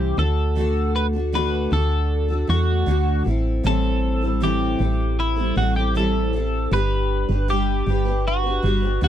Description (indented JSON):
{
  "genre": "acoustic pop",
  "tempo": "78 BPM",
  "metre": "4/4",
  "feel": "straight",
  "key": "G major",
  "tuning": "A4 = 440 Hz",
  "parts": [
    { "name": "twelve-string electric guitar", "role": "melody", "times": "0.0-9.1 s", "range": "E4 to B4", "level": "-25 LUFS", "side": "left 2 dB", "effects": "wide subtle chorus" },
    { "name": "picked steel-string acoustic guitar", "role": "accompaniment", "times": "0.0-9.1 s", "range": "A2 to C5", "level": "-24 LUFS", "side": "equal", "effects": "double-tracked left and right" },
    { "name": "solid FM bass", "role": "bass", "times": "0.0-9.1 s", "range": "G1 to E2", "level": "-22 LUFS", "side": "equal", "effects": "none" }
  ],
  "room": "little or no reverb",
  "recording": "dry, close 1970s-style studio recording",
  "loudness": "-19 LUFS",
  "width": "side -10 dB against mid",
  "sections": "0.0-6.7 A section; 6.7-9.1 B section",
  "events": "none",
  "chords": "0.2 D; 3.3 Am7; 6.7 G"
}